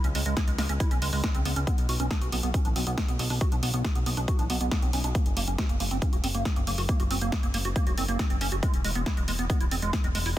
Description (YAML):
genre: uplifting trance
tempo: 138 BPM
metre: 4/4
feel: straight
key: unclear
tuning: A4 = 440 Hz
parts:
  - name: liquid acid bass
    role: arpeggios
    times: 0.0-10.3 s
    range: G#3 to F#4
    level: -32 LUFS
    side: right 2 dB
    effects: lush chorus, sidechain pumping, ping-pong delay
  - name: fat analog bass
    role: bass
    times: 0.0-10.3 s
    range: D1 to C#2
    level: -30 LUFS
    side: equal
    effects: sidechain pumping
  - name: punchy analog drum machine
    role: drums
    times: 0.0-10.3 s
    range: hi-hat, snare drum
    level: -33 LUFS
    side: equal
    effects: none
  - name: electronic kick drum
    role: drums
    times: 0.4-10.0 s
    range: none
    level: -26 LUFS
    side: equal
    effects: none
room: little or no reverb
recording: dense, heavily limited modern master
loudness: -24 LUFS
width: side -14 dB against mid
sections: 0.0-10.4 A section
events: none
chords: 0.0 C#7(no3); 1.7 N.C.; 5.2 F#; 8.6 E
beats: 0.37 0.80 1.24 | 1.67 2.11 2.54 2.98 | 3.41 3.85 4.28 4.71 | 5.15 5.58 6.02 6.45 | 6.89 7.32 7.76 8.19 | 8.63 9.06 9.50 9.93